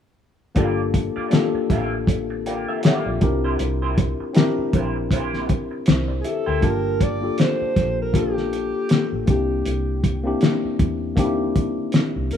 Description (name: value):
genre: lush 1970s-style soul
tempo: 79 BPM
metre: 4/4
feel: swing 58% on 16ths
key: G dorian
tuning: A4 = 440 Hz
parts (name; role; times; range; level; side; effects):
- tine electric piano; accompaniment; 0.5-12.4 s; Bb3 to A5; -24 LUFS; left 3 dB; overdrive
- electric guitar through a small old amp; riff; 0.6-6.7 s; Bb3 to E5; -30 LUFS; right 4 dB; wah
- vintage muted fingered electric bass; bass; 0.6-12.4 s; F1 to E2; -26 LUFS; equal; none
- cloth-damped thuddy drum kit; drums; 0.6-12.4 s; hi-hat, kick drum, snare drum; -20 LUFS; left 1 dB; none
- mellow alto saxophone; melody; 6.2-12.4 s; G4 to D5; -26 LUFS; right 1 dB; none
room: light reverb, studio ambience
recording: rough home demo mix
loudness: -19 LUFS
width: side -8 dB against mid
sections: 0.6-6.6 A section; 6.6-12.4 B section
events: none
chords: 0.6 Gm7; 3.2 C7; 6.6 Gm7; 9.3 C7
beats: | 0.56 1.32 2.08 2.84 | 3.60 4.36 5.11 5.87 | 6.63 7.39 8.14 8.90 | 9.66 10.42 11.17 11.93